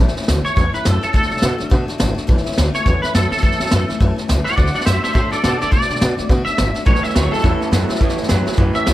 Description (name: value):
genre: rockabilly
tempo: 210 BPM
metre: 4/4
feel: swing 60% on 8ths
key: A major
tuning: A4 = 440 Hz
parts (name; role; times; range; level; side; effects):
- picked steel-string acoustic guitar; accompaniment; 0.0-8.9 s; A2 to F#4; -25 LUFS; left 4 dB; none
- upright bass; bass; 0.0-8.9 s; G#1 to B2; -19 LUFS; equal; none
- vintage brush drum kit; drums; 0.1-8.9 s; hi-hat, kick drum, snare drum; -18 LUFS; equal; none
- twangy electric guitar; melody; 0.4-8.9 s; A4 to F#5; -21 LUFS; equal; ensemble chorus, analog delay
- electric guitar through a small old amp; riff; 6.9-8.9 s; A2 to F#3; -22 LUFS; right 3 dB; none
room: small room ambience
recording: none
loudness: -14 LUFS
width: side -15 dB against mid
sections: 0.0-8.9 A section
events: none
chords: 0.0 A; 1.1 D; 2.3 A; 4.6 D; 6.9 A